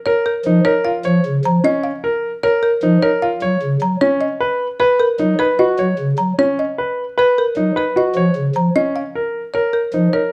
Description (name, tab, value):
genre	classical, minimalist pattern music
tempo	152 BPM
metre	6/4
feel	straight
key	unclear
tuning	A4 = 440 Hz
part	folk marimba with medium hard mallets	melody	0.1-10.3 s	A#4 to A#5	-21 LUFS	equal	none
part	clear concert grand piano	arpeggios	0.1-10.3 s	C#4 to C#5	-20 LUFS	equal	none
part	pipe organ, stopped flute	accompaniment	0.5-10.1 s	C#3 to F#3	-19 LUFS	equal	none
room	light reverb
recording	close, detailed microphones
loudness	-17 LUFS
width	mono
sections	0.0-10.3 A section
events	none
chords	0.0 C#69; 3.4 Bmaj7; 8.2 C#69